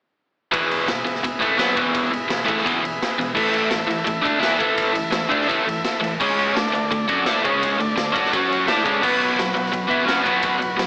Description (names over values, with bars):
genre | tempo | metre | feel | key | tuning
garage rock duo or trio | 170 BPM | 4/4 | straight | E major | A4 = 440 Hz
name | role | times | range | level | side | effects
overdriven combo organ | sustained chords | 0.5-10.9 s | B3 to E5 | -27 LUFS | equal | none
overdriven electric guitar | riff | 0.5-10.9 s | E2 to A4 | -22 LUFS | equal | none
raw garage drum kit | drums | 0.5-10.9 s | crash cymbal, kick drum, ride cymbal, snare drum | -28 LUFS | equal | none
room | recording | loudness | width
moderate studio reverb, RT60 0.6 s | AM radio sound | -21 LUFS | mono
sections
0.5-10.9 A section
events
none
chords
0.5 E; 3.4 A5; 6.2 C#5; 6.6 D5; 7.4 C#5; 7.8 D5; 8.3 F#5; 8.7 D5; 9.0 B5